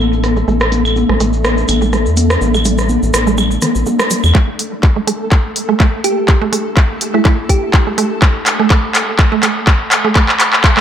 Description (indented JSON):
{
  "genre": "minimal techno",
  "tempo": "124 BPM",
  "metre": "4/4",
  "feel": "swing 54% on 16ths",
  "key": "unclear",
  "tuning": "A4 = 440 Hz",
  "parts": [
    { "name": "rubbery square bass", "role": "bass", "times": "0.0-4.3 s", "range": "A1 to E2", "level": "-15 LUFS", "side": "equal", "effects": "sidechain pumping" },
    { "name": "cabasa", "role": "percussion", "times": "0.0-4.3 s", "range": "none", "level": "-28 LUFS", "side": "right 2 dB", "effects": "none" },
    { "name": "deep dark ambient pad", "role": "texture", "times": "0.0-10.8 s", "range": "D4 to E5", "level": "-27 LUFS", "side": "left 2 dB", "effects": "chorus, built-in reverb, sidechain pumping" },
    { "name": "flickering grainy texture", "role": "texture", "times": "0.0-10.8 s", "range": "A3 to A4", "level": "-25 LUFS", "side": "left 2 dB", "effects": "built-in reverb, sidechain pumping" },
    { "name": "minimal click drum kit", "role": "drums", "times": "0.2-10.8 s", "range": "handclaps, hi-hat", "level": "-15 LUFS", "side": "equal", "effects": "high-pass filter on hats, studio reverb, high-pass filter on snare, analog delay" },
    { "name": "electronic rim click, congas and claves", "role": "percussion", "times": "0.2-4.3 s", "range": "none", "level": "-15 LUFS", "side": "equal", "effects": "studio reverb" },
    { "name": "resonant blip pluck", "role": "riff", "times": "0.4-10.8 s", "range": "E3 to A3", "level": "-19 LUFS", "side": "right 7 dB", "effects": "chorus, sidechain pumping, analog delay" },
    { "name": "electronic kick drum", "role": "drums", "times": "4.3-10.7 s", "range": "none", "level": "-10 LUFS", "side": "equal", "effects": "studio reverb" },
    { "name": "thumb-piano-like synth pluck", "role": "melody", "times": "6.0-8.0 s", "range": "E4 to G4", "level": "-21 LUFS", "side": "equal", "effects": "chorus, phaser, analog delay" }
  ],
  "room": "moderate spring reverb, RT60 1.4 s, digital ambience",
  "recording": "echo-heavy mix, low-pass filter",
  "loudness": "-11 LUFS",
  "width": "side -9 dB against mid",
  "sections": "0.0-4.3 A section; 4.3-10.8 B section",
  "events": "filter sweep 0.0-4.3; build-up 4.3-10.8; drum fill 4.3-10.8; filter sweep on synth arpeggio sound 4.3-10.8",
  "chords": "0.0 Asus4"
}